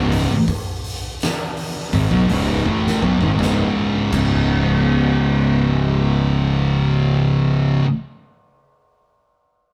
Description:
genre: stoner and doom metal.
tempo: 82 BPM.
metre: 4/4.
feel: straight.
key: unclear.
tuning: A4 = 439 Hz.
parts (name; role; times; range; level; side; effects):
thick fuzz guitar; riff; 0.0-7.8 s; C#2 to A3; -21 LUFS; equal; distortion.
thick fuzz guitar; riff; 0.0-7.8 s; C#2 to A3; -24 LUFS; equal; distortion.
fuzz fingered electric bass; bass; 0.0-7.8 s; C#1 to B1; -24 LUFS; equal; overdrive.
oversized low-tuned drum kit; drums; 0.1-4.3 s; crash cymbal, hi-hat, kick drum, snare drum; -27 LUFS; equal; none.
room: light reverb.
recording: rough rehearsal-room recording, tube saturation.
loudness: -18 LUFS.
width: mono.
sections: 0.0-3.4 A section; 3.4-6.3 B section.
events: drum fill 2.7-3.4.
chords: 0.0 C#m; 3.4 C#5.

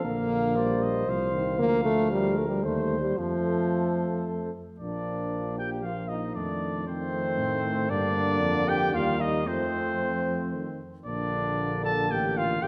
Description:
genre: classical, brass quintet.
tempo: 115 BPM.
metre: 3/4.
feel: straight.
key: Bb major.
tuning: A4 = 440 Hz.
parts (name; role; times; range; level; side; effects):
warm trumpet; melody; 0.0-12.7 s; C5 to A5; -35 LUFS; equal; none.
mellow flugelhorn; second line; 0.0-12.7 s; C4 to C5; -35 LUFS; equal; none.
mellow trombone; accompaniment; 0.0-12.7 s; D3 to A3; -38 LUFS; equal; none.
warm French horn; accompaniment; 0.0-12.7 s; F3 to Bb3; -32 LUFS; equal; none.
mellow tuba; bass; 0.0-12.7 s; G1 to A2; -34 LUFS; equal; none.
room: wet recital hall reverb, RT60 1.6 s.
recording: none.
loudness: -27 LUFS.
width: mono.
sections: 0.0-4.8 A section; 4.8-12.7 B section.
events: none.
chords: 0.0 Bb; 1.6 Bb/D; 2.6 Cm/Eb; 3.2 F; 4.8 Bb; 6.4 F7; 7.9 Gm; 8.9 Eb; 9.5 F; 11.1 Bb.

